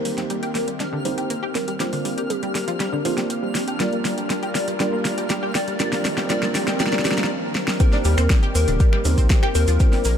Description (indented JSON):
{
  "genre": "progressive house",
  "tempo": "120 BPM",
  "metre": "4/4",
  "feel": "straight",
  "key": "unclear",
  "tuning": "A4 = 440 Hz",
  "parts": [
    { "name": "plucky unison lead", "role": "melody", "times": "0.0-10.2 s", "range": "G4 to D5", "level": "-28 LUFS", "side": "left 1 dB", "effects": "phaser, sidechain pumping, ping-pong delay" },
    { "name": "lush unison pad", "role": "sustained chords", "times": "0.0-10.2 s", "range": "Eb3 to Bb4", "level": "-30 LUFS", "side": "equal", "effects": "chorus, sidechain pumping" },
    { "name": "analog pluck", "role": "arpeggios", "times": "0.0-10.2 s", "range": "D3 to G4", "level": "-29 LUFS", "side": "left 2 dB", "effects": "ensemble chorus, sidechain pumping, ping-pong delay" },
    { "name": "felt-muted upright piano", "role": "stabs", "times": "0.0-10.2 s", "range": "G3 to C5", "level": "-28 LUFS", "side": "right 3 dB", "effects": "sidechain pumping, low-pass filter, ping-pong delay" },
    { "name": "riser", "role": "sound effects", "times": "0.0-7.3 s", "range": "none", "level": "-36 LUFS", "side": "right 1 dB", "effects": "none" },
    { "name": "twinkling granular texture", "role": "texture", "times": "0.5-7.3 s", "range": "F6", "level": "-37 LUFS", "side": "left 1 dB", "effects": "built-in reverb, sidechain pumping" },
    { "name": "round analog bass", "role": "bass", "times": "0.1-10.2 s", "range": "Eb1 to G2", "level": "-24 LUFS", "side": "equal", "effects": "none" },
    { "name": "deep house drum kit", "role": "drums", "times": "0.1-10.2 s", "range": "finger snaps, hi-hat, snare drum", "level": "-26 LUFS", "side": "equal", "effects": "none" },
    { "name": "electronic kick drum", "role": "drums", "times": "7.8-9.9 s", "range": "none", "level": "-17 LUFS", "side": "equal", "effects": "none" },
    { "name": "egg shaker", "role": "percussion", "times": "7.8-10.1 s", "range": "none", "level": "-33 LUFS", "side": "right 3 dB", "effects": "none" }
  ],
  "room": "light reverb",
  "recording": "none",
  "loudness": "-19 LUFS",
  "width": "side -8 dB against mid",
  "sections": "0.0-7.8 A section; 7.8-10.2 B section",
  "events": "build-up 0.0-7.8; drum fill 0.0-7.3, 7.6; filter sweep on digital synth lead 0.0-7.8; break 7.3-7.8; drop 7.8-10.2",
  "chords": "0.0 Eb6; 1.8 Bbadd9; 3.8 Gm7; 5.8 F7sus4; 7.8 Eb6"
}